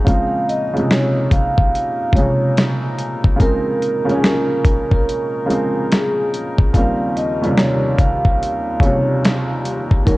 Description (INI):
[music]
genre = lo-fi hip hop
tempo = 72 BPM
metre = 4/4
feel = swing 65% on 16ths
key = Bb minor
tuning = A4 = 440 Hz
[part]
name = dark upright piano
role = accompaniment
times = 0.0-10.2 s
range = Eb2 to Db4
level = -20 LUFS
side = right 1 dB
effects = none
[part]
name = warm brass ensemble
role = sustained chords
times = 0.0-10.2 s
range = Eb2 to Db5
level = -29 LUFS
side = left 2 dB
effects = none
[part]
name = vibraphone with soft mallets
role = melody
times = 0.1-10.2 s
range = Ab4 to F5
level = -21 LUFS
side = right 1 dB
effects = analog delay
[part]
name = dusty soul sampler-style drum kit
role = drums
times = 0.1-10.2 s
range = hi-hat, kick drum, snare drum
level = -16 LUFS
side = equal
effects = overdrive
[sound]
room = light reverb, small room ambience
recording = worn, warbling old tape, cassette tape, warbly pitch drift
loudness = -15 LUFS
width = side -20 dB against mid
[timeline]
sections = 0.0-10.2 A section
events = none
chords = 0.1 Bbm9; 6.7 Eb13